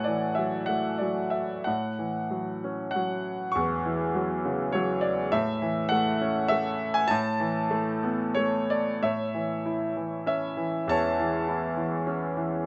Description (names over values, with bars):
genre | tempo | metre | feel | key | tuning
classical, lyrical solo piano | 87-104 BPM | 3/4 | rubato | A major | A4 = 440 Hz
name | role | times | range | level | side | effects
clear grand piano | solo | 0.0-12.7 s | E2 to C#6 | -28 LUFS | equal | none
room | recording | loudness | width
light reverb | nothing above 7.8 kHz | -28 LUFS | mono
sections
0.0-9.0 A section; 9.0-12.7 B section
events
none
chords
0.0 F#m7/A; 1.7 A6; 5.3 F#m7/A; 7.1 Asus2; 9.0 A